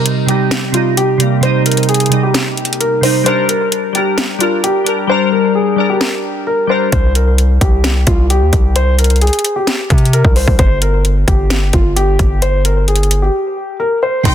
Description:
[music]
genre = hip hop, trap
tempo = 131 BPM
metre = 4/4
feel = half-time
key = C minor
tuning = A4 = 437 Hz
[part]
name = glassy digital keys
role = accompaniment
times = 0.0-6.9, 14.2-14.3 s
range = C3 to Bb4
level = -14 LUFS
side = equal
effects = chorus, phaser, low-pass filter
[part]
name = trap drum kit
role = drums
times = 0.1-14.3 s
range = crash cymbal, hi-hat, kick drum, snare drum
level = -15 LUFS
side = equal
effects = none
[part]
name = dark concert grand piano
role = melody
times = 0.3-14.3 s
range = F4 to C6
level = -16 LUFS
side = left 1 dB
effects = low-pass filter, ping-pong delay
[part]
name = distorted 808-style bass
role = bass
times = 6.9-14.3 s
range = G1 to C3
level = -12 LUFS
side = equal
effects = distortion
[part]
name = warm studio violin section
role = second line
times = 14.3 s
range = G5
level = -26 LUFS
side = equal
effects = ping-pong delay
[sound]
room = little or no reverb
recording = dense, heavily limited modern master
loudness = -11 LUFS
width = side -10 dB against mid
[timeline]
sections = 0.0-14.3 A section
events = break 0.0-6.9, 13.3-14.3; hi-hats muted 5.1-6.9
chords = 0.0 Cm; 3.3 Gm; 6.9 C5; 10.6 N.C.

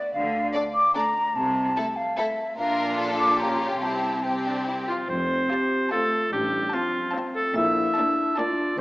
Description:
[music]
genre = cinematic, playful, whimsical film cue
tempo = 146 BPM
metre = 3/4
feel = straight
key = F major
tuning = A4 = 440 Hz
[part]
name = mellow hollow silver concert flute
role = second line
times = 0.0-4.9 s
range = D5 to D6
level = -24 LUFS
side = equal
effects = none
[part]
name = rich chamber cello section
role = bass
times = 0.1-8.8 s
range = F2 to D3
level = -32 LUFS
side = equal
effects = none
[part]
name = rich symphonic double bass section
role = bass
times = 0.1-8.8 s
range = F1 to D2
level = -39 LUFS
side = right 1 dB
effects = none
[part]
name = rich chamber violin section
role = melody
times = 0.5-8.7 s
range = G4 to A5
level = -32 LUFS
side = left 1 dB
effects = none
[part]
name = rich chamber violin section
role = second line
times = 0.5-8.7 s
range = C4 to F4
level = -35 LUFS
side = left 1 dB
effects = none
[part]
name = rich chamber viola section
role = accompaniment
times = 0.5-8.7 s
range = A3 to D4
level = -34 LUFS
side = equal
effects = none
[part]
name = marimba with soft mallets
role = melody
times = 4.9-8.8 s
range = F4 to E5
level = -32 LUFS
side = left 1 dB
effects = none
[part]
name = clear oboe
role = second line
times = 4.9-8.8 s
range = F4 to E5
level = -25 LUFS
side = right 1 dB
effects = none
[part]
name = dark French horn section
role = sustained chords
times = 4.9-8.8 s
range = F3 to E4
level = -29 LUFS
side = left 2 dB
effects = none
[part]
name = warm tuba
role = bass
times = 5.1-8.8 s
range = F1 to Bb1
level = -36 LUFS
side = right 1 dB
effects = none
[part]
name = dark clarinet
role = second line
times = 5.5-8.8 s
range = Bb3 to G4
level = -32 LUFS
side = equal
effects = none
[sound]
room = wet scoring stage reverb, RT60 1.9 s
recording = small speaker sound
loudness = -22 LUFS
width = side -20 dB against mid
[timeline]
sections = 0.0-5.1 A section; 5.1-8.8 B section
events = none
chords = 0.1 Dm; 1.4 Am/C; 2.6 Bb; 3.4 Gm7b5/Bb; 3.8 C; 5.1 F; 6.3 F/A; 7.6 Bbmaj7

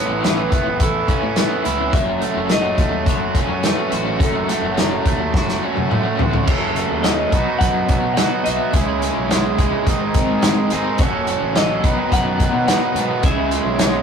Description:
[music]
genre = indie rock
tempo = 106 BPM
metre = 4/4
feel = straight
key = unclear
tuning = A4 = 440 Hz
[part]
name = twelve-string electric guitar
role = melody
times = 0.0-14.0 s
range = A4 to F#5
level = -25 LUFS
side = left 2 dB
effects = none
[part]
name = overdriven electric guitar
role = riff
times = 0.0-14.0 s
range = F#2 to B4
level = -20 LUFS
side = right 2 dB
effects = none
[part]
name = raw garage guitar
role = riff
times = 0.0-14.0 s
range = F#2 to F#4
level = -25 LUFS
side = left 2 dB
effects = overdrive, tremolo
[part]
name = fuzz fingered electric bass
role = bass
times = 0.1-14.0 s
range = F#1 to B2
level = -27 LUFS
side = equal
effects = overdrive
[part]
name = loose indie drum kit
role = drums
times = 0.2-13.9 s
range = crash cymbal, hi-hat, kick drum, snare drum, toms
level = -19 LUFS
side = equal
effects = none
[sound]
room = moderate small room ambience, RT60 0.5 s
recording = rough rehearsal-room recording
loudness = -16 LUFS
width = side -7 dB against mid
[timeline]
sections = 0.0-6.5 A section; 6.5-14.0 B section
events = drum fill 5.3-6.5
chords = 0.0 Aadd9; 1.9 F#m; 7.3 B; 8.7 C#m; 9.9 G#; 11.0 F#m; 11.8 B; 13.2 C#m

